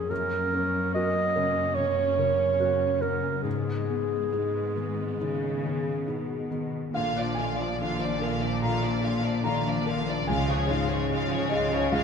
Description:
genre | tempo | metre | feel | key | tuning
cinematic, emotional film score for orchestra | 71 BPM | 4/4 | uneven beats, rubato | unclear | A4 = 439 Hz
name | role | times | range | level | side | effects
mellow clarinet | second line | 0.0-6.5 s | Ab4 to Eb5 | -27 LUFS | right 2 dB | none
felt-muted upright piano | accompaniment | 0.0-12.0 s | Db2 to Bb5 | -32 LUFS | left 1 dB | none
rich studio viola section | accompaniment | 0.0-12.0 s | D3 to Db4 | -37 LUFS | right 4 dB | none
concert harp | arpeggios | 0.0-12.0 s | F2 to Ab4 | -33 LUFS | left 7 dB | none
rich studio cello section | bass | 0.0-12.0 s | F2 to Db3 | -32 LUFS | right 2 dB | none
clear studio double bass section | bass | 6.9-12.0 s | Bb1 to Db2 | -34 LUFS | right 4 dB | none
rich studio violin section | melody | 7.0-12.0 s | Db5 to F5 | -32 LUFS | left 3 dB | none
warm studio violin section | second line | 7.0-12.0 s | D4 to Ab4 | -35 LUFS | left 3 dB | none
room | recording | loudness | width
wet scoring stage reverb, RT60 1.5 s | none | -24 LUFS | side -6 dB against mid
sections
0.0-6.9 A section; 6.9-12.0 B section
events
none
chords
0.1 Gb; 3.5 Abm; 6.9 Bb; 10.3 Db

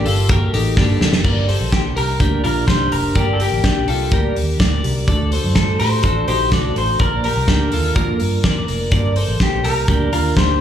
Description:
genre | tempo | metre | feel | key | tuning
jangly indie pop | 125 BPM | 4/4 | straight | G minor | A4 = 439 Hz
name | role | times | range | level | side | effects
electric guitar through a small old amp | melody | 0.0-10.6 s | G4 to D5 | -22 LUFS | left 2 dB | slapback echo
fingerpicked twelve-string acoustic guitar | accompaniment | 0.0-10.6 s | G2 to Bb4 | -25 LUFS | right 4 dB | slapback echo
twelve-string electric guitar | arpeggios | 0.0-10.6 s | D4 to D5 | -24 LUFS | left 2 dB | slapback echo, digital delay
vintage muted fingered electric bass | bass | 0.0-10.6 s | F1 to A2 | -20 LUFS | equal | none
loose indie drum kit | drums | 0.1-10.5 s | crash cymbal, hi-hat, kick drum, snare drum | -19 LUFS | equal | none
room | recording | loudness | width
light reverb, studio ambience | live gig heard through the venue's PA, club reverb | -14 LUFS | side -10 dB against mid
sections
0.0-1.2 A section; 1.2-10.6 B section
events
drum fill 0.8-1.2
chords
0.0 Gmadd9; 1.2 Gm; 5.1 D; 7.0 Bb

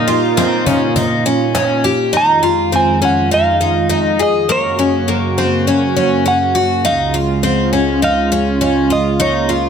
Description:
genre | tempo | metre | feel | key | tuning
dream pop | 102 BPM | 4/4 | straight | unclear | A4 = 438 Hz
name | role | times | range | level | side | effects
warm analog pad | sustained chords | 0.0-9.7 s | Db2 to Gb4 | -17 LUFS | right 2 dB | chorus
picked twelve-string acoustic guitar | arpeggios | 0.0-9.7 s | Bb3 to Ab4 | -15 LUFS | left 3 dB | wide subtle chorus, tape echo
cajon | drums | 0.1-1.9 s | none | -23 LUFS | equal | none
semi-hollow electric guitar | melody | 2.2-9.7 s | Db5 to Bb5 | -17 LUFS | right 2 dB | tape echo
room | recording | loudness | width
moderate plate reverb, RT60 1.7 s, small room ambience | none | -12 LUFS | side -7 dB against mid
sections
0.0-2.1 A section; 2.1-9.7 B section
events
none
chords
0.0 Db6/Bb; 2.1 Fm7; 4.5 Gb; 6.8 Db

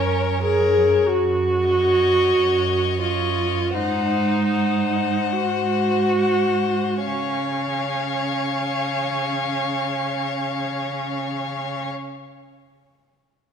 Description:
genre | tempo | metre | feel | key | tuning
classical, slow romantic movement for string quartet | 33-51 BPM | 4/4 | rubato | Db major | A4 = 440 Hz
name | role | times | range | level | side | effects
warm violin | melody | 0.0-11.9 s | Db5 to Gb5 | -27 LUFS | left 12 dB | none
clear violin | second line | 0.0-11.9 s | Bb4 to Db5 | -29 LUFS | left 4 dB | none
rich viola | accompaniment | 0.0-11.9 s | Db4 to Ab4 | -22 LUFS | right 1 dB | none
rich cello | bass | 0.0-11.9 s | Gb2 to Db3 | -26 LUFS | right 3 dB | none
room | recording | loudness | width
wet scoring stage reverb, RT60 1.9 s | none | -19 LUFS | side -7 dB against mid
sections
0.0-7.1 A section; 7.1-13.5 B section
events
slowing down 0.0-7.1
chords
0.0 Gb; 1.1 Ebm9/Gb; 3.7 Ab7; 7.1 Db

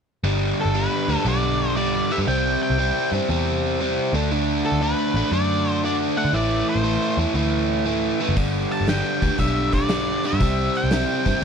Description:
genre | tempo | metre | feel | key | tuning
blues rock power trio and southern rock | 118 BPM | 4/4 | swing 67% on 8ths | unclear | A4 = 440 Hz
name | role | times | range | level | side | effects
biting overdriven guitar | riff | 0.2-11.4 s | G2 to D4 | -22 LUFS | equal | none
vintage muted picked electric bass | bass | 0.2-11.3 s | F#1 to D3 | -24 LUFS | equal | none
octave-fuzz lead guitar | melody | 0.6-11.4 s | A4 to A5 | -26 LUFS | equal | distortion, slapback echo
oversized low-tuned drum kit | drums | 8.4-11.4 s | hi-hat, kick drum, snare drum | -25 LUFS | equal | none
room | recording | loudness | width
small room ambience | dry, close 1970s-style studio recording | -19 LUFS | side -6 dB against mid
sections
0.2-11.4 A section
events
none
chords
0.2 G; 2.3 C; 4.0 D; 6.3 Am; 8.4 G; 10.4 C

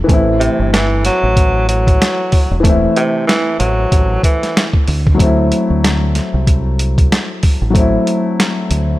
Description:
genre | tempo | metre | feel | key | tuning
hip hop, boom-bap hip-hop | 94 BPM | 4/4 | swing 58% on 16ths | A dorian | A4 = 440 Hz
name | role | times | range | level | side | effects
dark baby grand piano | accompaniment | 0.0-9.0 s | E3 to E4 | -17 LUFS | left 2 dB | cassette tape, high-pass filter, low-pass filter
deep dub fingered electric bass | bass | 0.1-9.0 s | E1 to D2 | -16 LUFS | equal | none
boom bap sampler-style drum kit | drums | 0.1-8.9 s | hi-hat, kick drum, snare drum | -14 LUFS | equal | none
breathy tenor saxophone | melody | 0.4-4.7 s | C3 to F#3 | -17 LUFS | right 1 dB | high-pass filter, low-pass filter
room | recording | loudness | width
studio reverb | none | -11 LUFS | side -17 dB against mid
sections
0.1-9.0 A section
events
none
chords
0.1 Am; 4.9 D7

